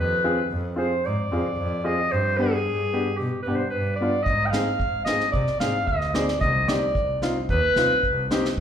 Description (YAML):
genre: klezmer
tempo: 112 BPM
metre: 4/4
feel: straight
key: unclear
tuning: A4 = 440 Hz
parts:
  - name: warm clarinet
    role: melody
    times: 0.0-8.3 s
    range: G4 to G5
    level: -24 LUFS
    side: equal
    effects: slapback echo
  - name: clear double bass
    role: bass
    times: 0.0-8.4 s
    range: C2 to C3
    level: -28 LUFS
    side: equal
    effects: none
  - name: warm upright piano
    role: accompaniment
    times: 0.2-8.4 s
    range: B3 to Ab4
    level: -27 LUFS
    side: left 1 dB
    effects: slapback echo
  - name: unplugged drum kit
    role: drums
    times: 4.3-8.6 s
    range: kick drum, snare drum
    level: -29 LUFS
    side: right 1 dB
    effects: none
room: light reverb, studio reverb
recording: live gig heard through the venue's PA, club reverb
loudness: -21 LUFS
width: side -8 dB against mid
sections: 0.0-8.6 A section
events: none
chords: 0.0 Fm; 2.1 G; 4.3 Ab; 6.4 Cm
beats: 0.50 1.04 1.57 | 2.11 2.65 3.18 3.72 | 4.26 4.80 5.33 5.87 | 6.41 6.95 7.49 8.03 | 8.57